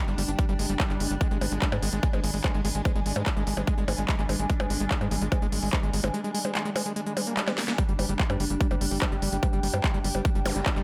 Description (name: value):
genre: psychedelic trance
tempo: 146 BPM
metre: 4/4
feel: straight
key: unclear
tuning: A4 = 439 Hz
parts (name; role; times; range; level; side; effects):
- swarming drone; sustained chords; 0.1-10.8 s; G3 to D4; -39 LUFS; equal; built-in reverb, phaser, sidechain pumping
- airy breathy pad; texture; 0.0-10.8 s; Eb3 to Ab5; -39 LUFS; equal; chorus, sidechain pumping
- overdriven acid bass; riff; 0.1-10.8 s; G3 to D4; -35 LUFS; equal; distortion, sidechain pumping, digital delay
- tight sequencer bass; bass; 0.1-10.8 s; G1 to Ab2; -33 LUFS; equal; none
- techno drum kit; drums; 0.1-10.8 s; handclaps, hi-hat, percussion blips, snare drum; -34 LUFS; equal; none
- electronic kick drum; drums; 0.4-10.7 s; none; -29 LUFS; equal; overdrive
- swell and zap; sound effects; 7.3-7.8, 10.5-10.6 s; none; -41 LUFS; equal; none
room: light reverb, digital ambience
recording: none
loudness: -27 LUFS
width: mono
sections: 0.0-10.8 A section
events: drum fill 7.5-7.8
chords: 0.0 G5; 1.2 Ab5; 7.8 G5